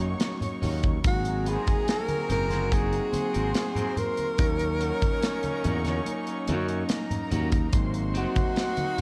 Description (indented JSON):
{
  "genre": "lush 1970s-style soul",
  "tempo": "72 BPM",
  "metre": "4/4",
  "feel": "straight",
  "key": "unclear",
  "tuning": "A4 = 440 Hz",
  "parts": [
    { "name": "warm studio string section", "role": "second line", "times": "0.0-9.0 s", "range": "A#4 to C#6", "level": "-41 LUFS", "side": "equal", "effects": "none" },
    { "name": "mellow tine electric piano", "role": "accompaniment", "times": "0.0-9.0 s", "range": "F#3 to F#4", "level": "-36 LUFS", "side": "equal", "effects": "none" },
    { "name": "muted French horn section", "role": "sustained chords", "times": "0.0-9.0 s", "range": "B#2 to F#4", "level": "-44 LUFS", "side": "equal", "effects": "none" },
    { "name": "electric guitar at the edge of break-up", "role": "riff", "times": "0.0-9.0 s", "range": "B#3 to C#5", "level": "-42 LUFS", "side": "equal", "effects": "phaser" },
    { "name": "brilliant trombone section", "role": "stabs", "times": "0.0-9.0 s", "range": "A#2 to G#4", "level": "-40 LUFS", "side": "equal", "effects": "none" },
    { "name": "modern bright fingered electric bass", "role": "bass", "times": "0.0-8.2 s", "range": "F#1 to F#2", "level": "-31 LUFS", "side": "equal", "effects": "none" },
    { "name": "modern studio drum kit", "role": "drums", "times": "0.0-9.0 s", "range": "hi-hat, kick drum, snare drum", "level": "-30 LUFS", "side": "equal", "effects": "none" },
    { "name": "congas", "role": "percussion", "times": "0.2-9.0 s", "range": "none", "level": "-37 LUFS", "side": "equal", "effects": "none" },
    { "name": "breathy tenor saxophone", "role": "melody", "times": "1.1-9.0 s", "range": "F#4 to A#4", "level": "-32 LUFS", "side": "equal", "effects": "none" }
  ],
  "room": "light reverb, small room reverb",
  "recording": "dark, warm production",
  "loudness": "-27 LUFS",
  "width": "mono",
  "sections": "0.0-9.0 A section",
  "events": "none",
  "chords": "0.0 D#m7; 1.0 G#9; 4.4 D#m7; 7.7 G#9"
}